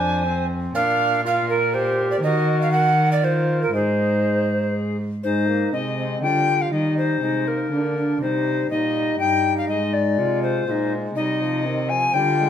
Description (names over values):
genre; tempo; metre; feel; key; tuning
classical, renaissance-style consort dance; 121 BPM; 3/4; straight; unclear; A4 = 438 Hz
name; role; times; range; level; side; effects
bright tenor recorder; melody; 0.0-12.5 s; Ab4 to Ab5; -24 LUFS; left 6 dB; none
mellow tenor recorder; second line; 0.0-12.5 s; C4 to Ab5; -22 LUFS; right 2 dB; none
brilliant trombone; accompaniment; 0.0-12.5 s; Eb3 to G4; -28 LUFS; left 2 dB; none
warm cello; bass; 0.0-12.5 s; F2 to Eb3; -25 LUFS; right 1 dB; none
room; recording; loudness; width
wet stone room reverb, RT60 1.1 s; heard from further back in the room; -19 LUFS; side -9 dB against mid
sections
0.0-5.2 A section; 5.2-12.5 B section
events
none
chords
0.0 Fm; 0.8 Bb; 2.2 Ebm; 3.7 Ab; 6.7 Eb; 8.2 Cm; 9.7 Ab; 11.2 Cm